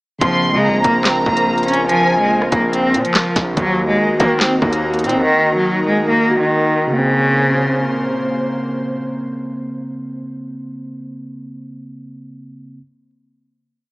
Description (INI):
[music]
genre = hip hop, drill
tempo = 143 BPM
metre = 4/4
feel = half-time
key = Bb minor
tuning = A4 = 440 Hz
[part]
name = rich cello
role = melody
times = 0.2-8.1 s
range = Db3 to Db4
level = -16 LUFS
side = equal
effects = none
[part]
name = warm studio violin section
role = second line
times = 0.2-2.3 s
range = Ab5 to C6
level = -18 LUFS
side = equal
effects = tape echo
[part]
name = mellow tine electric piano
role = accompaniment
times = 0.2-12.8 s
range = Db3 to Gb4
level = -24 LUFS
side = right 1 dB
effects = none
[part]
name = airy breathy pad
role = sustained chords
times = 0.2-10.2 s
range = Bb2 to C5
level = -22 LUFS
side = equal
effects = chorus
[part]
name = distorted 808-style bass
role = bass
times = 0.2-5.2 s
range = Bb1 to Eb3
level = -21 LUFS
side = equal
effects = distortion
[part]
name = drill drum kit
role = drums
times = 0.2-5.1 s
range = handclaps, hi-hat, kick drum, rim click, snare drum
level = -19 LUFS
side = equal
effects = none
[sound]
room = light reverb, digital ambience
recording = small speaker sound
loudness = -14 LUFS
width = side -22 dB against mid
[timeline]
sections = 0.2-6.9 hook; 6.9-10.3 final chord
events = none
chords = 0.2 Bbmadd9; 3.6 Ebm; 6.9 Bbmadd9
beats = | 0.21 0.63 1.05 1.47 | 1.89 2.31 2.73 3.15 | 3.57 3.99 4.41 4.83 | 5.25 5.67 6.09 6.51 | 6.93 7.35 7.77 8.19 | 8.61 9.03 9.45 9.86